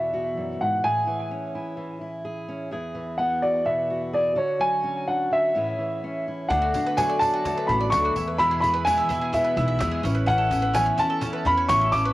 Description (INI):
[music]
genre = indie folk with a building arrangement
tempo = 127 BPM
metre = 4/4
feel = straight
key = E mixolydian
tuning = A4 = 440 Hz
[part]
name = warm upright piano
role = melody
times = 0.0-12.1 s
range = C#5 to D6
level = -22 LUFS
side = equal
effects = cassette tape, tape echo
[part]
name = fingerpicked steel-string acoustic guitar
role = accompaniment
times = 0.0-12.1 s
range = E2 to B4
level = -31 LUFS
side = equal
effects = cassette tape
[part]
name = picked steel-string acoustic guitar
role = accompaniment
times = 6.5-12.1 s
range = E2 to F#4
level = -31 LUFS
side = left 3 dB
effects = cassette tape
[part]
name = bowl-back mandolin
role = arpeggios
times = 6.5-12.1 s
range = C#4 to E5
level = -31 LUFS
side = right 3 dB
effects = cassette tape, tape echo
[part]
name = upright bass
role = bass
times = 6.5-12.1 s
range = A1 to E2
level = -27 LUFS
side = equal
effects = none
[part]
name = cajon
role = drums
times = 6.5-12.0 s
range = none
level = -34 LUFS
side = equal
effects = none
[part]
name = tambourine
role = percussion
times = 6.7-12.0 s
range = none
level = -44 LUFS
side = right 5 dB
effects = none
[sound]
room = light reverb, studio ambience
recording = home recording on cassette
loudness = -21 LUFS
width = side -17 dB against mid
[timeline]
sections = 0.0-6.5 A section; 6.5-12.1 B section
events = none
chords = 0.0 Eadd9; 0.8 Amaj7; 2.7 Eadd9; 4.4 Dmaj7; 5.6 Amaj7; 6.5 D6; 8.2 E; 10.0 Aadd9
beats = 0.36 | 0.84 1.31 1.78 2.25 | 2.72 3.20 3.67 4.14 | 4.61 5.09 5.56 6.03 | 6.50 6.98 7.45 7.92 | 8.39 8.86 9.34 9.81 | 10.28 10.75 11.22 11.69